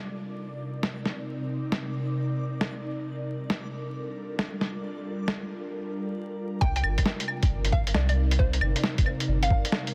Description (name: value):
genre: future garage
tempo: 135 BPM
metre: 4/4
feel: swing 65% on 16ths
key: unclear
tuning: A4 = 441 Hz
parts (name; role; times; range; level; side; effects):
- ethereal airy pad; sustained chords; 0.0-9.9 s; C3 to D5; -35 LUFS; equal; ensemble chorus, built-in reverb, vintage 12-bit sampler grit, sidechain pumping
- backwards swelling texture; texture; 0.0-6.2 s; D5; -48 LUFS; equal; built-in reverb
- lo-fi sampler-style drum kit; drums; 0.8-9.9 s; claves, hi-hat, snare drum; -32 LUFS; equal; none
- hollow square pluck; melody; 6.6-9.9 s; C5 to G5; -36 LUFS; equal; chorus, tape echo
- warm sub bass; bass; 6.6-9.6 s; G1 to C2; -28 LUFS; equal; tube saturation, sidechain pumping
- electronic kick drum; drums; 6.6-9.6 s; none; -26 LUFS; equal; none
room: light reverb, digital ambience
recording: dense, heavily limited modern master, vinyl crackle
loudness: -28 LUFS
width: mono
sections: 0.0-6.6 A section; 6.6-9.9 B section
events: none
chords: 0.0 Cm9; 3.1 Gm7; 6.6 Cm9